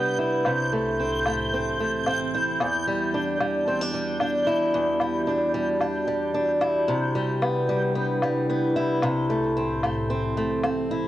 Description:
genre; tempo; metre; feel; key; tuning
folktronica; 112 BPM; 4/4; straight; E minor; A4 = 440 Hz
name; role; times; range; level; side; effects
warbly tape-like pad; sustained chords; 0.0-11.1 s; C2 to G4; -30 LUFS; equal; chorus, built-in reverb, cassette tape, plate reverb
fingerpicked old ladder-braced acoustic guitar; arpeggios; 0.0-11.1 s; E2 to E4; -24 LUFS; equal; low-pass filter, cassette tape, tape echo, plate reverb
backwards swelling texture; texture; 0.0-11.1 s; G6; -31 LUFS; right 1 dB; built-in reverb, cassette tape, plate reverb
woodblock; drums; 0.4-10.7 s; none; -26 LUFS; left 1 dB; low-pass filter on perc, cassette tape
room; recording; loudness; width
moderate booth ambience, RT60 0.2 s; home recording on cassette; -22 LUFS; side -14 dB against mid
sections
0.0-11.1 A section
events
filter sweep on ambient pad 0.0-11.1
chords
0.5 Am/C; 2.6 Em7; 6.9 Cmaj7; 9.0 Am/C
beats
| 0.46 1.00 1.53 2.07 | 2.60 3.14 3.67 4.21 | 4.75 5.28 5.82 6.35 | 6.89 7.42 7.96 8.50 | 9.03 9.57 10.10 10.64

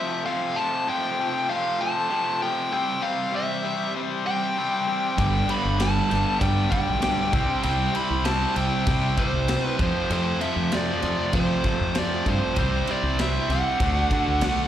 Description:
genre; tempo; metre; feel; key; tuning
classic rock; 98 BPM; 4/4; straight; unclear; A4 = 439 Hz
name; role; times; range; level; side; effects
biting lead guitar; melody; 0.0-14.7 s; C5 to B5; -26 LUFS; right 1 dB; overdrive, slapback echo
phased string machine; sustained chords; 0.0-14.7 s; E3 to D5; -37 LUFS; right 3 dB; none
overdriven electric guitar; riff; 0.0-14.7 s; F2 to D4; -28 LUFS; left 6 dB; slapback echo
sludgy distorted guitar; riff; 5.2-14.7 s; G2 to G4; -31 LUFS; right 11 dB; overdrive
sludgy distorted guitar; riff; 5.2-14.7 s; F2 to D4; -32 LUFS; right 2 dB; overdrive
fingered electric bass; bass; 5.2-14.7 s; G1 to F3; -26 LUFS; equal; none
big rock drum kit; drums; 5.2-14.6 s; crash cymbal, kick drum, snare drum; -28 LUFS; equal; none
room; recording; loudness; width
small room ambience; live gig heard through the venue's PA, club reverb; -21 LUFS; side -11 dB against mid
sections
0.0-14.7 A section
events
none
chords
0.0 F; 2.7 C; 5.2 G; 7.3 C; 9.8 F; 12.6 C; 13.8 D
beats
| 0.27 0.88 1.50 2.11 | 2.72 3.34 3.95 4.57 | 5.18 5.80 6.41 7.03 | 7.64 8.26 8.88 9.49 | 10.11 10.72 11.34 11.95 | 12.57 13.19 13.80 14.42

